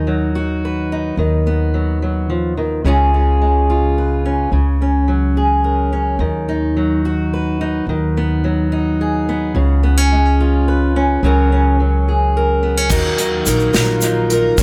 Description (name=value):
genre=indie folk with a building arrangement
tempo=72 BPM (dotted quarters)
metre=6/8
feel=straight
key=unclear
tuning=A4 = 441 Hz
part: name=fingerpicked steel-string acoustic guitar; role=accompaniment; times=0.0-14.6 s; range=A#2 to B4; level=-19 LUFS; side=equal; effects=analog delay
part: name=upright bass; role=bass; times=0.0-14.6 s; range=A#1 to D#2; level=-20 LUFS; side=equal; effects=none
part: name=picked acoustic archtop guitar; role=accompaniment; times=12.9-14.6 s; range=A#2 to A#4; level=-21 LUFS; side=equal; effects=analog delay
part: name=unplugged drum kit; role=drums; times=12.9-14.6 s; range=crash cymbal, hi-hat, kick drum, snare drum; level=-21 LUFS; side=equal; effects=analog delay
part: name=tube shaker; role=percussion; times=12.9-14.6 s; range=none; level=-26 LUFS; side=equal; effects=none
room=small room reverb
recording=echo-heavy mix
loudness=-16 LUFS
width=mono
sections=0.0-12.9 A section; 12.9-14.6 B section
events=none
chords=0.0 D#m; 1.2 B/D#; 2.8 C#; 4.5 F#add9/C#; 6.2 D#m; 7.9 B/D#; 9.6 C#; 11.2 F#add9/C#; 12.9 D#madd9